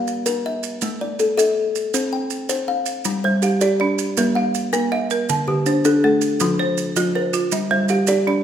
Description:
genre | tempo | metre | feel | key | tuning
southern african traditional, mbira-style interlocking cycle | 107 BPM (dotted quarters) | 12/8 | straight | G equiheptatonic | A4 = 440 Hz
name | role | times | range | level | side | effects
kalimba | arpeggios | 0.0-8.4 s | D3 to G5 | -19 LUFS | left 2 dB | none
maracas | percussion | 0.1-8.2 s | none | -29 LUFS | right 9 dB | none
folk marimba with hard mallets | arpeggios | 3.2-8.4 s | D3 to A5-29c | -21 LUFS | right 4 dB | none
room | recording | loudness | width
moderate recital hall reverb, RT60 1.4 s | recorded in a church or concert hall | -17 LUFS | side -9 dB against mid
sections
0.0-8.4 A section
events
none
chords
0.0 Bb5; 0.8 A5; 1.9 C5; 3.1 G5; 4.2 Bb; 5.3 Dm; 6.4 F; 7.5 Gm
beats
0.26 | 0.82 1.38 1.94 2.50 | 3.06 3.62 4.17 4.73 | 5.29 5.85 6.41 6.96 | 7.52 8.08

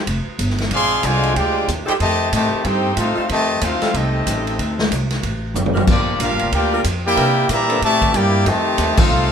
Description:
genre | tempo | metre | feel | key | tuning
jazz, big band swing | 186 BPM | 4/4 | swing 61% on 8ths | F major | A4 = 440 Hz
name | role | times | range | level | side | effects
clear saxophone section | sustained chords | 0.0-9.3 s | E3 to Bb4 | -28 LUFS | right 1 dB | none
upright bass | bass | 0.1-9.3 s | F1 to C3 | -22 LUFS | equal | none
swinging big-band drum kit | drums | 0.1-9.0 s | crash cymbal, hi-hat, kick drum, ride cymbal, snare drum, toms | -22 LUFS | equal | none
brilliant trumpet section | melody | 0.7-9.3 s | Bb3 to C6 | -19 LUFS | equal | none
brilliant trombone section | second line | 0.7-9.3 s | C3 to G4 | -22 LUFS | left 1 dB | none
room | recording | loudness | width
light reverb | minimal, uncompressed stereo recording | -15 LUFS | side -7 dB against mid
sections
0.0-9.3 A section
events
drum fill 5.6-5.9; band accent 8.9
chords
0.1 Fsus2; 0.7 Bb9; 2.0 F9; 4.6 D7b9; 5.9 Gm7; 7.2 C9; 8.5 F9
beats
0.07 0.39 | 0.71 1.04 1.36 1.68 | 2.01 2.33 2.65 2.98 | 3.30 3.62 3.94 4.26 | 4.59 4.91 5.23 5.56 | 5.88 6.20 6.52 6.85 | 7.17 7.49 7.81 8.14 | 8.46 8.78 9.10

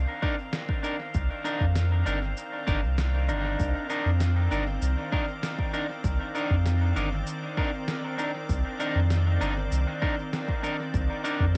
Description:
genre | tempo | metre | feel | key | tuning
ambient dub | 98 BPM | 4/4 | straight | C minor | A4 = 440 Hz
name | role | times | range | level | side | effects
soft additive organ-like pad | sustained chords | 0.0-11.6 s | Eb3 to D5 | -38 LUFS | equal | ensemble chorus, built-in reverb, cassette tape
soft dub sub bass | bass | 0.0-11.6 s | G1 to F2 | -27 LUFS | equal | none
drifting glass-harmonics texture | texture | 0.0-11.6 s | F5 | -44 LUFS | equal | chorus, built-in reverb, cassette tape
electric guitar at the edge of break-up | stabs | 0.2-11.4 s | D4 to Bb4 | -34 LUFS | equal | cassette tape, dub echo
electronic kick drum | drums | 0.2-11.5 s | none | -32 LUFS | equal | overdrive, cassette tape
electronic snare drum and shaker | drums | 0.5-11.4 s | none | -40 LUFS | equal | cassette tape, dub echo
room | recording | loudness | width
little or no reverb | home recording on cassette | -28 LUFS | mono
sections
0.0-11.6 A section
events
fade-in on ambient pad 0.0-11.6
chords
0.0 Cm9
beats
0.53 | 1.14 1.76 2.37 2.98 | 3.59 4.21 4.82 5.43 | 6.04 6.65 7.27 7.88 | 8.49 9.10 9.71 10.33 | 10.94 11.55

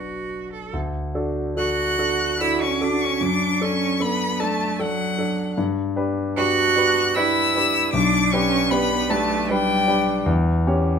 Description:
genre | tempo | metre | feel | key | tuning
classical, slow romantic movement for piano trio | 76 BPM | 3/4 | rubato | D major | A4 = 440 Hz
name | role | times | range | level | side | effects
bright cello | second line | 0.0-10.3 s | F#3 to A4 | -23 LUFS | right 7 dB | none
dark concert grand piano | accompaniment | 0.0-11.0 s | B1 to C#5 | -22 LUFS | left 1 dB | none
clear violin | melody | 1.6-10.3 s | F#5 to F#6 | -23 LUFS | left 5 dB | none
room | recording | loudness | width
light reverb | minimal, uncompressed stereo recording | -19 LUFS | side -6 dB against mid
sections
0.7-11.0 A section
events
none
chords
0.0 Bm; 0.7 D; 3.2 D/F#; 5.6 G; 7.9 G/B; 10.3 C#dim/E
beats
| 0.73 1.57 2.40 | 3.21 4.01 4.80 | 5.58 6.38 7.16 | 7.94 8.72 9.49 | 10.28

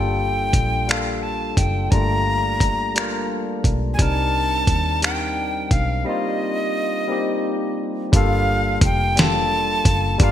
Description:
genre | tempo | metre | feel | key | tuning
slow six-eight R&B | 58 BPM (dotted quarters) | 6/8 | straight | G minor | A4 = 440 Hz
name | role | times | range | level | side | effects
breathy alto recorder | melody | 0.0-10.3 s | Eb5 to Bb5 | -23 LUFS | equal | none
barky tine electric piano | accompaniment | 0.0-10.3 s | G3 to Bb4 | -24 LUFS | left 2 dB | wide subtle chorus
vintage muted fingered electric bass | bass | 0.0-10.3 s | F1 to Eb2 | -24 LUFS | equal | none
dusty soul sampler-style drum kit | drums | 0.5-10.3 s | finger snaps, hi-hat, kick drum, snare drum | -19 LUFS | equal | overdrive, gated reverb
room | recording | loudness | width
moderate lush hall reverb, RT60 1.7 s | bright 1980s-style digital production | -18 LUFS | side -11 dB against mid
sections
0.0-8.1 A section; 8.1-10.3 B section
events
break 6.1-8.1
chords
0.0 Gm9; 4.0 Cm9; 8.1 Gm9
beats
0.89 | 1.92 2.96 | 3.99 5.02 | 6.06 7.09 | 8.13 9.16 | 10.20

